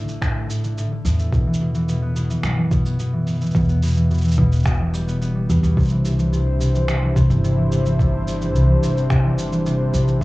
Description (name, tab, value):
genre	folktronica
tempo	108 BPM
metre	4/4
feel	straight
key	C lydian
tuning	A4 = 440 Hz
part	concert harp	arpeggios	0.0-10.2 s	A2 to C4	-20 LUFS	left 1 dB	cassette tape, analog delay
part	upright bass	bass	0.0-10.2 s	E1 to F#2	-21 LUFS	equal	none
part	electronic cabasa and finger snaps	drums	0.1-10.2 s	none	-33 LUFS	right 1 dB	cassette tape
part	electronic kick drum	drums	0.2-10.2 s	none	-21 LUFS	equal	cassette tape
part	warm analog pad	sustained chords	5.8-10.2 s	G3 to C5	-25 LUFS	equal	chorus, cassette tape, plate reverb
room	light reverb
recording	home recording on cassette, small room ambience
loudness	-17 LUFS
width	side -20 dB against mid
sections	0.0-10.2 A section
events	none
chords	0.0 D5; 1.3 Em; 5.8 Cadd9